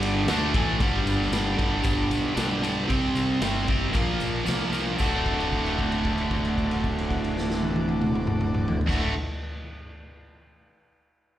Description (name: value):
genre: garage rock duo or trio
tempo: 114 BPM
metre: 4/4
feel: straight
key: D major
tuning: A4 = 440 Hz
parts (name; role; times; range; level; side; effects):
- overdriven combo organ; sustained chords; 0.0-9.1 s; D4 to E5; -38 LUFS; equal; lush chorus
- cranked stack guitar; riff; 0.0-9.1 s; D2 to F#4; -25 LUFS; right 1 dB; overdrive, slapback echo
- growling fingered electric bass; bass; 0.0-9.1 s; D1 to D2; -31 LUFS; equal; overdrive
- raw garage drum kit; drums; 0.0-9.0 s; crash cymbal, kick drum, ride cymbal, snare drum, toms; -28 LUFS; equal; none
- tambourine; percussion; 0.3-5.2 s; none; -44 LUFS; left 1 dB; none
room: little or no reverb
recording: live gig heard through the venue's PA, club reverb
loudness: -22 LUFS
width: side -12 dB against mid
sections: 0.8-5.0 A section; 5.0-9.2 B section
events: transistor combo organ fill 0.0-0.8; held note 5.0-8.9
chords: 0.3 D; 0.8 G; 2.9 C; 3.9 Bb; 5.0 D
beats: 0.28 | 0.81 1.33 1.85 2.37 | 2.90 3.42 3.94 4.47 | 5.00 5.52 6.05 6.57 | 7.10 7.62 8.15 8.68